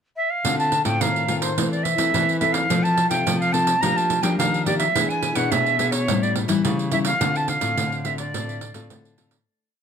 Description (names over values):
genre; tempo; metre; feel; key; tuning
samba and choro; 106 BPM; 4/4; straight; D minor; A4 = 440 Hz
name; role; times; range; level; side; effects
jazz flute; melody; 0.2-9.0 s; C5 to Bb5; -22 LUFS; right 1 dB; plate reverb, tape echo
nylon-string guitar; accompaniment; 0.4-9.4 s; A2 to A4; -26 LUFS; left 6 dB; none
nylon-string guitar; bass; 0.4-9.4 s; A2 to F3; -26 LUFS; equal; none
pandeiro; percussion; 0.4-9.5 s; none; -27 LUFS; right 8 dB; none
room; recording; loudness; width
light reverb; close, detailed microphones; -19 LUFS; side -7 dB against mid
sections
0.0-0.4 pickup bar; 0.4-9.5 A section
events
fade-out 7.2-9.5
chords
0.4 Dm7; 1.6 Am/E; 2.7 F; 3.8 Bb6/F; 5.0 E7; 6.1 A7; 7.2 Dm7